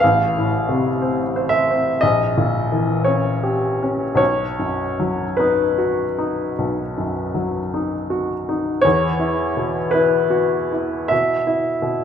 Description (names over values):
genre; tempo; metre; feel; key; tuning
classical, romantic nocturne for solo piano; 48-62 BPM; 4/4; rubato; unclear; A4 = 438 Hz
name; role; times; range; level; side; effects
clear upright piano; solo; 0.0-12.0 s; A1 to F5; -17 LUFS; left 1 dB; none
room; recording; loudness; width
moderate recital hall reverb, RT60 1.6 s; minimal, uncompressed stereo recording; -17 LUFS; side -8 dB against mid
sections
0.0-8.8 A section; 8.8-12.0 A section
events
none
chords
0.0 F/A; 2.0 A#dim7; 4.2 B; 8.8 E5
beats
| 0.01 1.00 2.02 3.06 | 4.20 5.39 6.59 7.73 | 8.84 9.93 11.11